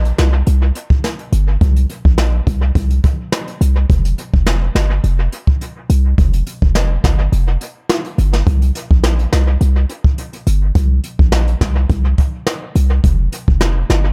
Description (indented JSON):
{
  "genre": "dancehall",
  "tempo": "105 BPM",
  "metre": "4/4",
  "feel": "straight",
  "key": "unclear",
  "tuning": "A4 = 440 Hz",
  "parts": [
    { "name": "warm 808-style bass", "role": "bass", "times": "0.0-14.1 s", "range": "F1 to C2", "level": "-16 LUFS", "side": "equal", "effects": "none" },
    { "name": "jazz brush drum kit", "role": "drums", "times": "0.0-14.0 s", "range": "hi-hat, kick drum, rim click, snare drum", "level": "-19 LUFS", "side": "equal", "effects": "dub echo" }
  ],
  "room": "little or no reverb",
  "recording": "echo-heavy mix",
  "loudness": "-15 LUFS",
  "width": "mono",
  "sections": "0.0-14.1 A section",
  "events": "break 7.3-8.5",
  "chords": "none"
}